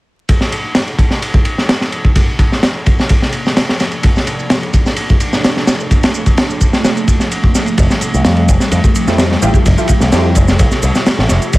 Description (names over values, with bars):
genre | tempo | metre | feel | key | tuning
breakbeat, breaks | 128 BPM | 4/4 | straight | Bb lydian | A4 = 441 Hz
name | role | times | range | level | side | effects
phased analog pad | sustained chords | 0.3-11.6 s | C3 to E5 | -21 LUFS | equal | phaser, chorus, sidechain pumping
crunchy breakbeat drum kit | drums | 0.3-11.6 s | kick drum, ride cymbal, snare drum | -12 LUFS | equal | none
shaker | drums | 0.3-11.6 s | none | -27 LUFS | right 3 dB | low-pass filter on perc
picked electric bass with an envelope filter | bass | 7.8-11.6 s | F1 to F2 | -13 LUFS | equal | tube saturation
orchestra-hit-like synth stab | stabs | 9.1-10.3 s | A3 to G4 | -19 LUFS | right 1 dB | built-in reverb, phaser, digital delay
room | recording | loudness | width
little or no reverb | vinyl crackle | -10 LUFS | side -19 dB against mid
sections
0.3-11.6 A section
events
none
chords
0.3 Bbmaj9; 7.8 Fmaj9